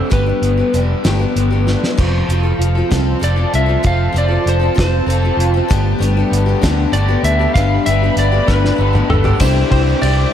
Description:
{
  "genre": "folk rock and heartland rock",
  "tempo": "65 BPM (dotted quarters)",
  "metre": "6/8",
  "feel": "straight",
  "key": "unclear",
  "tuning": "A4 = 440 Hz",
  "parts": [
    { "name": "lightly driven lead guitar", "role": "melody", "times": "0.0-10.3 s", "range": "A4 to F5", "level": "-20 LUFS", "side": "equal", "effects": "analog chorus, diffuse ambient delay" },
    { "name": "picked steel-string acoustic guitar", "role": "accompaniment", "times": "0.0-10.3 s", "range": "G2 to A4", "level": "-21 LUFS", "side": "left 6 dB", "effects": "none" },
    { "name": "crunchy overdriven guitar", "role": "riff", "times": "0.0-10.3 s", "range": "C3 to A4", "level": "-21 LUFS", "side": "right 1 dB", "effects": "lush chorus" },
    { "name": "fingered electric bass", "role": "bass", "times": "0.1-10.2 s", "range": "F1 to D2", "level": "-16 LUFS", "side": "equal", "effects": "none" },
    { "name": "cloth-damped thuddy drum kit", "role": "drums", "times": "0.1-10.2 s", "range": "crash cymbal, hi-hat, kick drum, ride cymbal, snare drum, toms", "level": "-19 LUFS", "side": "equal", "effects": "none" },
    { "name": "dark studio string section", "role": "sustained chords", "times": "2.0-10.3 s", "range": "F4 to D6", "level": "-26 LUFS", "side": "left 3 dB", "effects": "none" },
    { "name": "tambourine", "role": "percussion", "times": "9.4-10.1 s", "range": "none", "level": "-35 LUFS", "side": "right 10 dB", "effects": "none" }
  ],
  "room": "moderate plate reverb, RT60 2.3 s",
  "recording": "dreamy mix soaked in reverb",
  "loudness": "-12 LUFS",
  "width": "side -9 dB against mid",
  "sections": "0.0-2.0 A section; 2.0-9.4 B section",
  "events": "drum fill 1.7-2.0, 8.5-9.4",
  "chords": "0.1 Gadd9; 2.0 F; 5.7 Gadd9; 9.4 Cadd9"
}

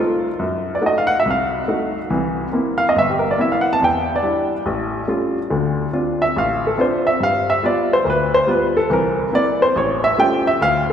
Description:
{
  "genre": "solo jazz",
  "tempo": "141 BPM",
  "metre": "4/4",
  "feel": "swing 67% on 8ths",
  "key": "C mixolydian",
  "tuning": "A4 = 440 Hz",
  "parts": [
    { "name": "warm baby grand piano", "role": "solo", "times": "0.0-10.9 s", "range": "G1 to A5", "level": "-16 LUFS", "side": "equal", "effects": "none" }
  ],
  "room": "wet church reverb, RT60 4.0 s",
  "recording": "recorded in a church or concert hall",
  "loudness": "-16 LUFS",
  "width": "side -8 dB against mid",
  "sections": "0.0-10.9 A section",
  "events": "grand piano solo 0.0-10.9",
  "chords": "0.4 F#dim7; 2.1 C7; 3.8 Em7; 4.7 Aaug7; 5.5 Dm7; 7.2 G7; 8.9 C7; 9.7 A7b13"
}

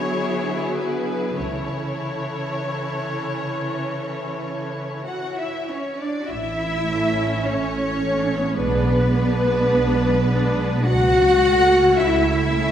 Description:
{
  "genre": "classical, slow romantic movement for string orchestra",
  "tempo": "48-57 BPM",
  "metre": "4/4",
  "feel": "rubato",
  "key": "A major",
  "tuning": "A4 = 440 Hz",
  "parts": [
    { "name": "rich chamber violin section", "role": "melody", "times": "0.0-12.7 s", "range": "B4 to F#5", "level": "-28 LUFS", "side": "left 2 dB", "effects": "none" },
    { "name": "rich chamber violin section", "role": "second line", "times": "0.0-12.7 s", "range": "E4 to F#5", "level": "-26 LUFS", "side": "left 1 dB", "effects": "none" },
    { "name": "rich chamber viola section", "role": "accompaniment", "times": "0.0-12.7 s", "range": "E3 to D4", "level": "-28 LUFS", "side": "right 1 dB", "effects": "none" },
    { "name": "rich chamber cello section", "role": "bass", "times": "0.0-12.7 s", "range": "C#3 to F#4", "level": "-23 LUFS", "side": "equal", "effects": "none" },
    { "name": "rich chamber double bass section", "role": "bass", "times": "1.4-12.7 s", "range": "A1 to C#2", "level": "-23 LUFS", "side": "right 1 dB", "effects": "none" }
  ],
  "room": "wet scoring stage reverb, RT60 2.0 s",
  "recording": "heard from further back in the room",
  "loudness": "-19 LUFS",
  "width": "side -10 dB against mid",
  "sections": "0.0-6.3 A section; 6.3-12.7 A section",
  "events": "none",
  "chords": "0.0 E7/D; 1.4 A/C#; 6.3 A; 8.6 Bm6; 10.9 A/C#"
}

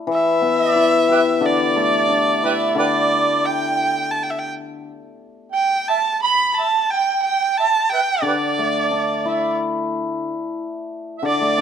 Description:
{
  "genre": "chinese traditional, Chinese chamber ensemble",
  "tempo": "89 BPM",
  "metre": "4/4",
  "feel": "rubato",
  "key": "D zhi mode",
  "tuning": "A4 = 440 Hz",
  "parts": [
    { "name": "clear erhu", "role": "melody", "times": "0.1-11.6 s", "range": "D5 to B5", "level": "-20 LUFS", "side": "equal", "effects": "none" },
    { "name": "mellow harmonica", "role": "second line", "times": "0.1-11.6 s", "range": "G4 to B5", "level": "-21 LUFS", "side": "right 6 dB", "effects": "none" },
    { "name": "hammered dulcimer", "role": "accompaniment", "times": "0.1-11.6 s", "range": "D3 to G4", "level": "-21 LUFS", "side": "left 5 dB", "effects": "none" }
  ],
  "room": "moderate recital hall reverb, RT60 1.4 s",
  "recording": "close, detailed microphones",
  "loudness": "-16 LUFS",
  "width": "side -8 dB against mid",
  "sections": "0.0-11.6 A section",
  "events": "none",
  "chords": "none"
}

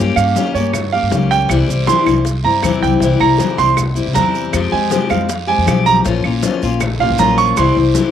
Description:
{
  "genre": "latin, Cuban son and guajira",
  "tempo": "158 BPM",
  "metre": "4/4",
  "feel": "straight",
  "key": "unclear",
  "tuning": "A4 = 440 Hz",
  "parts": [
    { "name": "picked steel-string acoustic guitar", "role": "accompaniment", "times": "0.0-8.1 s", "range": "C3 to G4", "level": "-17 LUFS", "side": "left 7 dB", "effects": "cassette tape" },
    { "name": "bright concert grand piano", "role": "arpeggios", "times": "0.0-8.1 s", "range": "Db5 to Db6", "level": "-16 LUFS", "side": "right 8 dB", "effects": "cassette tape" },
    { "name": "upright bass", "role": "bass", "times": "0.0-7.9 s", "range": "Bb1 to G2", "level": "-18 LUFS", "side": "equal", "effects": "none" },
    { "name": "bongos", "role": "percussion", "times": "0.2-8.0 s", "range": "none", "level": "-30 LUFS", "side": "left 9 dB", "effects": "none" },
    { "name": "claves", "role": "percussion", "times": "0.2-7.8 s", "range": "none", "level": "-26 LUFS", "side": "right 8 dB", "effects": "none" },
    { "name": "congas", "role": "percussion", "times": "0.2-8.1 s", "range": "none", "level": "-23 LUFS", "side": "left 6 dB", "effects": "none" },
    { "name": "maracas", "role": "percussion", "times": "0.2-8.1 s", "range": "none", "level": "-29 LUFS", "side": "right 10 dB", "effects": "none" },
    { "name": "guiro", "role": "percussion", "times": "0.4-8.1 s", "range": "none", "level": "-33 LUFS", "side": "right 10 dB", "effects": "none" }
  ],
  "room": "light reverb",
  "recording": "home recording on cassette",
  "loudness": "-12 LUFS",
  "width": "side -9 dB against mid",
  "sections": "0.0-8.1 A section",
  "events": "grand piano solo 0.0-8.1; drum fill 8.0",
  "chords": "0.0 Gdim; 1.5 C; 4.5 Fmadd9; 6.1 Bbm; 7.6 C"
}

